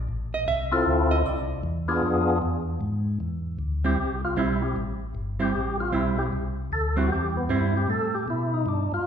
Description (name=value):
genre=soul jazz organ trio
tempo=154 BPM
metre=4/4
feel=swing 65% on 8ths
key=A minor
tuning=A4 = 443 Hz
part: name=mellow tonewheel organ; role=bass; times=0.0-9.0 s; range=G1 to B2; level=-28 LUFS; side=left 1 dB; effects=slow rotary speaker
part: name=hollow-body jazz guitar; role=accompaniment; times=0.3-7.7 s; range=G3 to E5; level=-28 LUFS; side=right 4 dB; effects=none
part: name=percussive tonewheel organ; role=melody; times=0.7-9.1 s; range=B3 to A4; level=-26 LUFS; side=left 1 dB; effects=slow rotary speaker, overdrive, chorus vibrato
room=wet recital hall reverb, RT60 1.5 s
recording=recorded in a church or concert hall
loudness=-23 LUFS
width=side -8 dB against mid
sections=0.0-3.2 A section; 3.2-9.1 A section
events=hollow-body jazz guitar solo 0.0-3.2; tonewheel organ solo 3.2-9.1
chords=0.1 Am; 0.9 Dm7; 1.6 E7b9; 3.2 Am7